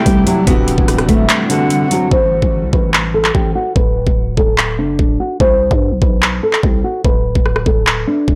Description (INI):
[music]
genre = hip hop, trap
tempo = 146 BPM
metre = 4/4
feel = half-time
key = A dorian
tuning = A4 = 439 Hz
[part]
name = jazz flute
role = second line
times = 0.0-2.1 s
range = F#5 to G5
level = -28 LUFS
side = equal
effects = tape echo
[part]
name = dark grand piano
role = accompaniment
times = 0.0-2.1 s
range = C3 to F#4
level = -20 LUFS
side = equal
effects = none
[part]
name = granular cloud pad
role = sustained chords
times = 0.1-2.1 s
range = D3 to G4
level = -27 LUFS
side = equal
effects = built-in reverb
[part]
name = nylon-string guitar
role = melody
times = 0.1-8.4 s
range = D3 to C5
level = -19 LUFS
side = equal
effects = low-pass filter, tape echo
[part]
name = growling 808-style bass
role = bass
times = 0.1-8.4 s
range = D1 to G2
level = -22 LUFS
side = equal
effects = none
[part]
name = trap drum kit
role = drums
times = 0.1-8.4 s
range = handclaps, hi-hat, kick drum, rim click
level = -17 LUFS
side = equal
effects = none
[sound]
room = light reverb, small room ambience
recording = blown-out, overdriven recording, overdrive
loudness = -14 LUFS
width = mono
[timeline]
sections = 0.0-2.1 A section; 2.1-8.4 B section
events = kick muted 1.3-2.1; break 2.1-8.4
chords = 0.5 D7; 2.1 Am; 3.8 N.C.; 5.4 C5; 7.0 D5